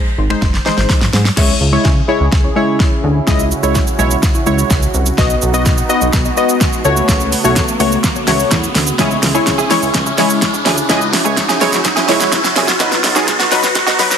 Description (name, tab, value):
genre	dance-pop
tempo	126 BPM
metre	4/4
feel	straight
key	C# minor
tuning	A4 = 440 Hz
part	warm analog keys	accompaniment	0.2-14.2 s	F#3 to D#5	-16 LUFS	left 2 dB	chorus, sidechain pumping
part	chorused synth bass	bass	0.2-13.9 s	F#1 to C#3	-18 LUFS	equal	sidechain pumping
part	pop drum kit	drums	0.3-14.2 s	crash cymbal, finger snaps, hi-hat, kick drum, shaker, snare drum	-15 LUFS	equal	soft clipping on snare
part	warm analog pad	sustained chords	1.4-14.2 s	C#3 to G#4	-22 LUFS	right 1 dB	chorus, sidechain pumping
part	riser	sound effects	3.9-14.2 s	none	-22 LUFS	equal	none
part	direct-recorded clean electric guitar	riff	9.0-14.1 s	B3 to G#4	-20 LUFS	right 4 dB	analog chorus
room	light reverb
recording	dense, heavily limited modern master, high-pass filter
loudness	-11 LUFS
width	side -8 dB against mid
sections	0.0-1.4 A section; 1.4-14.2 B section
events	drum fill 0.4-1.4, 1.4-14.2; build-up 1.4-14.2; filter sweep 1.4-14.2; riser 3.9-14.2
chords	0.0 G#; 1.4 C#m; 5.2 B; 6.8 A6; 9.0 C#m; 12.8 B